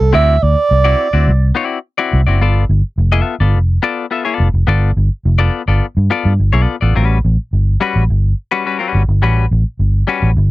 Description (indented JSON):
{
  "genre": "funk",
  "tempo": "106 BPM",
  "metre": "4/4",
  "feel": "straight",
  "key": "unclear",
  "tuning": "A4 = 440 Hz",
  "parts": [
    { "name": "breathy alto saxophone", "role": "melody", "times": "0.0-1.6 s", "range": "A4 to E5", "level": "-14 LUFS", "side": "right 5 dB", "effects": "none" },
    { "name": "vintage muted fingered electric bass", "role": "bass", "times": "0.0-10.5 s", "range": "F1 to G2", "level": "-12 LUFS", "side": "equal", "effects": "none" },
    { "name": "clean electric guitar", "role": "accompaniment", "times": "0.1-10.3 s", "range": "G3 to E5", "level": "-17 LUFS", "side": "left 6 dB", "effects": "none" }
  ],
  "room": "little or no reverb",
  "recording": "dry, close 1970s-style studio recording",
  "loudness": "-12 LUFS",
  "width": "side -18 dB against mid",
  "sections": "0.0-7.0 A section; 7.0-10.5 B section",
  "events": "none",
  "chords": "0.0 D9; 2.4 G9; 7.0 A13"
}